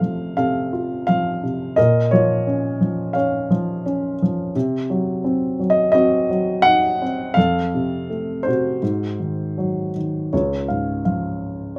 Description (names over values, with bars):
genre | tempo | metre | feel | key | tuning
classical, lyrical solo piano | 77-87 BPM | 4/4 | rubato | Bb harmonic minor | A4 = 440 Hz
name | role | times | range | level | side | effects
dark baby grand piano | solo | 0.0-11.8 s | Db2 to Gb5 | -20 LUFS | equal | none
room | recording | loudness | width
moderate studio reverb, RT60 0.5 s | faint mains hum | -20 LUFS | mono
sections
0.0-10.3 A section; 10.3-11.8 B section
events
none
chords
0.0 F; 1.8 Bbm; 4.5 Cdim; 7.4 F; 8.8 Ab7; 10.3 Db